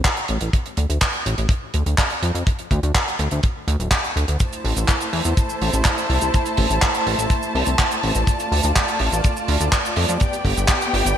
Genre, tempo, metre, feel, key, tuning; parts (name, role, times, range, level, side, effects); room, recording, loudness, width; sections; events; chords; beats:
italo disco; 124 BPM; 4/4; straight; A minor; A4 = 441 Hz
kick drum; drums; 0.0-10.8 s; -19 LUFS; equal
damped 70s drum kit; drums; 0.1-11.2 s; cabasa, handclaps, hi-hat; -23 LUFS; right 1 dB; gated reverb
chorused synth bass; bass; 0.3-11.1 s; D1 to F2; -22 LUFS; equal; tube saturation
muted studio string section; sustained chords; 4.4-11.2 s; A3 to A5; -23 LUFS; equal
moderate lush hall reverb, RT60 2.0 s; bright 1980s-style digital production; -18 LUFS; side -10 dB against mid
0.0-11.2 A section
0.0 N.C.; 4.4 Am; 8.3 Dm; 10.2 G
0.05 | 0.53 1.02 1.50 1.98 | 2.47 2.95 3.44 3.92 | 4.40 4.89 5.37 5.86 | 6.34 6.82 7.31 7.79 | 8.27 8.76 9.24 9.73 | 10.21 10.69